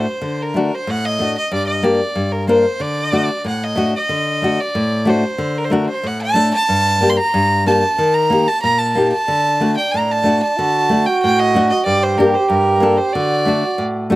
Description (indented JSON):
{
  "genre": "klezmer",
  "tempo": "93 BPM",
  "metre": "2/4",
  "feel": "straight",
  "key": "D phrygian dominant",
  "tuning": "A4 = 440 Hz",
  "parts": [
    { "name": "rich violin", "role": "melody", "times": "0.0-13.8 s", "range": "Bb4 to C6", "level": "-18 LUFS", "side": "right 1 dB", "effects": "none" },
    { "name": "nylon-string guitar", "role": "accompaniment", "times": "0.0-14.2 s", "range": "G2 to Bb4", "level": "-17 LUFS", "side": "left 2 dB", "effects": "none" },
    { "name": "trombone with cup mute", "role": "second line", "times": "9.3-14.1 s", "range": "D4 to G4", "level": "-18 LUFS", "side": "right 3 dB", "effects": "none" }
  ],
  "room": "light reverb",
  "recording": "recorded outdoors, with no room sound",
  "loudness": "-14 LUFS",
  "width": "side -17 dB against mid",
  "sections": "0.0-4.1 A section; 4.1-14.2 A section",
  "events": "none",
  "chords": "0.0 D; 1.5 Gm; 2.8 D; 6.7 Gm; 8.0 Eb; 9.3 D; 11.8 Gm; 13.1 D"
}